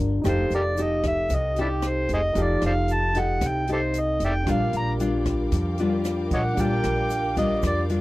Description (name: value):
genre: bossa nova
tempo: 114 BPM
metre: 4/4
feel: straight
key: unclear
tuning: A4 = 440 Hz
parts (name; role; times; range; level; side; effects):
- barky tine electric piano; accompaniment; 0.0-8.0 s; D4 to F5; -32 LUFS; right 2 dB; none
- nylon-string guitar; accompaniment; 0.0-8.0 s; Bb2 to Bb4; -27 LUFS; left 2 dB; none
- upright bass; bass; 0.0-8.0 s; F1 to F2; -27 LUFS; equal; none
- open jazz drum kit; drums; 0.2-8.0 s; hi-hat, kick drum, rim click; -31 LUFS; equal; none
- tube shaker; percussion; 0.2-8.0 s; none; -49 LUFS; right 13 dB; none
- overdriven harmonica; melody; 0.3-7.8 s; D4 to Bb5; -25 LUFS; right 1 dB; none
- warm studio string section; sustained chords; 4.5-8.0 s; Bb4 to D6; -36 LUFS; equal; none
room: little or no reverb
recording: dry, close 1970s-style studio recording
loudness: -21 LUFS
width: side -18 dB against mid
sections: 0.0-8.0 A section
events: harmonica solo 0.0-8.0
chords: 0.3 F9; 4.5 Bb6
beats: | 0.25 0.78 1.30 1.83 | 2.36 2.89 3.41 3.94 | 4.47 5.00 5.52 6.05 | 6.58 7.10 7.63